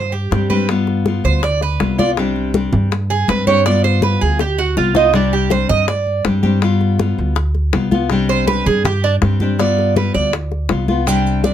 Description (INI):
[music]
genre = latin, Cuban son and guajira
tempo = 162 BPM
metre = 4/4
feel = straight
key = unclear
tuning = A4 = 440 Hz
[part]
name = Cuban tres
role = arpeggios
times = 0.0-11.5 s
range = D4 to G5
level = -17 LUFS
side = right 6 dB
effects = none
[part]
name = upright bass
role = bass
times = 0.0-11.5 s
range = C2 to G2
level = -18 LUFS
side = right 1 dB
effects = none
[part]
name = congas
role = percussion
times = 0.1-11.5 s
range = none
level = -22 LUFS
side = left 2 dB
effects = none
[part]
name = nylon-string guitar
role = accompaniment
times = 0.3-11.5 s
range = C3 to G4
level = -18 LUFS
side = left 4 dB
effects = none
[part]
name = bongos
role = percussion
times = 0.3-11.5 s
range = none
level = -22 LUFS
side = left 8 dB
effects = none
[part]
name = maracas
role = percussion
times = 11.1-11.5 s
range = none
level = -29 LUFS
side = right 7 dB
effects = none
[sound]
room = light reverb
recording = close, detailed microphones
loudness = -14 LUFS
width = side -10 dB against mid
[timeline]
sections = 0.0-11.5 A section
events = Cuban tres solo 0.0-11.5; drum fill 4.4-5.1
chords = 0.0 Csus2; 0.7 G7; 2.2 Csus2; 3.7 G7; 5.1 Csus2; 6.6 G7; 8.1 Csus2; 9.6 G7